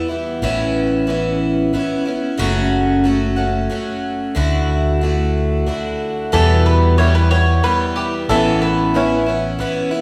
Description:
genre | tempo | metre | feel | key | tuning
acoustic folk duo or small band | 92 BPM | 3/4 | straight | E dorian | A4 = 440 Hz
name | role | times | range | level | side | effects
picked twelve-string acoustic guitar | accompaniment | 0.0-10.0 s | E2 to G4 | -21 LUFS | equal | none
fingered electric bass | bass | 0.4-9.6 s | F#1 to E2 | -22 LUFS | equal | none
mandolin | second line | 6.3-9.2 s | G4 to C#5 | -22 LUFS | equal | none
open-back banjo | arpeggios | 6.3-10.0 s | E3 to E4 | -24 LUFS | equal | none
room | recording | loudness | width
wet recital hall reverb, RT60 1.6 s | recorded in a church or concert hall | -17 LUFS | mono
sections
0.0-6.3 A section; 6.3-10.0 B section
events
mandolin solo 6.3-10.0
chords
0.4 Aadd9; 2.4 F#m; 4.4 Dadd9; 6.3 Em; 8.3 Aadd9

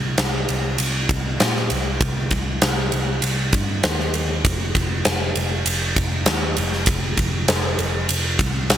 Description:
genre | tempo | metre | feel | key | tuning
hard rock | 98 BPM | 4/4 | straight | C minor | A4 = 440 Hz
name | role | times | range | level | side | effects
picked electric bass | bass | 0.0-8.8 s | F1 to Bb2 | -24 LUFS | equal | none
huge arena drum kit | drums | 0.2-8.8 s | kick drum, ride cymbal, snare drum | -20 LUFS | equal | none
room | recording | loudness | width
light reverb | bright 1980s-style digital production | -18 LUFS | side -10 dB against mid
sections
0.0-8.8 A section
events
none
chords
none

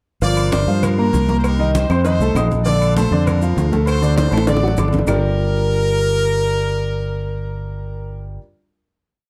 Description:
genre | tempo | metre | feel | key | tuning
latin, salsa | 199 BPM | 4/4 | straight | G minor | A4 = 441 Hz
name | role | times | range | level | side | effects
brilliant horn section | melody | 0.2-8.2 s | D4 to D5 | -25 LUFS | equal | slapback echo
clear grand piano | accompaniment | 0.2-8.4 s | D3 to Eb6 | -23 LUFS | equal | none
fingered electric bass | bass | 0.2-8.4 s | G1 to G2 | -21 LUFS | equal | none
agogo bells and timbales | percussion | 0.2-5.1 s | none | -32 LUFS | equal | none
congas | percussion | 0.2-5.2 s | none | -28 LUFS | equal | none
cowbell and bongos | percussion | 0.2-5.2 s | none | -29 LUFS | equal | none
maracas | percussion | 0.2-5.1 s | none | -42 LUFS | equal | none
claves | percussion | 0.4-5.1 s | none | -38 LUFS | equal | none
room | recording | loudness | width
light reverb | dark, warm production | -17 LUFS | mono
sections
0.2-5.1 mambo (horn riffs); 5.1-7.5 final chord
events
drum fill 4.2-5.1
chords
0.2 Gm7; 1.4 Cm7; 2.0 F7; 2.7 Bbmaj7; 3.9 D7; 5.1 Gm7

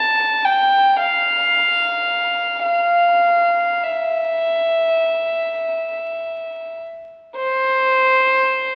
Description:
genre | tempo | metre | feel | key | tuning
classical, free, expressive piece for unaccompanied violin | free time | none | none | unclear | A4 = 440 Hz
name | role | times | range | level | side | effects
rich violin | solo | 0.0-8.8 s | C5 to A5 | -18 LUFS | equal | none
room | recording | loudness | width
wet recital hall reverb, RT60 1.5 s | very old 78 rpm record, vinyl crackle | -18 LUFS | mono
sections
0.0-7.4 A section; 7.4-8.8 B section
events
none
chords
none

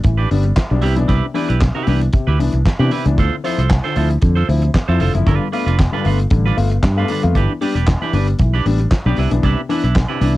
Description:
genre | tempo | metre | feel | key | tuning
disco | 115 BPM | 4/4 | straight | unclear | A4 = 439 Hz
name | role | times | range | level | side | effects
clean electric guitar | accompaniment | 0.0-10.4 s | D4 to C5 | -23 LUFS | right 7 dB | cassette tape
warm concert grand piano | accompaniment | 0.0-10.4 s | G2 to F4 | -22 LUFS | left 5 dB | cassette tape
fingered electric bass | bass | 0.0-10.4 s | E1 to C3 | -16 LUFS | equal | none
damped 70s drum kit | drums | 0.0-10.3 s | handclaps, hi-hat, kick drum, snare drum | -19 LUFS | equal | cassette tape
room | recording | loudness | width
light reverb | home recording on cassette | -14 LUFS | side -17 dB against mid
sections
0.0-10.4 A section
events
none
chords
0.0 Em7; 0.8 Cmaj7; 3.2 Dm7; 5.3 G7; 7.3 Em7; 9.2 Cmaj9

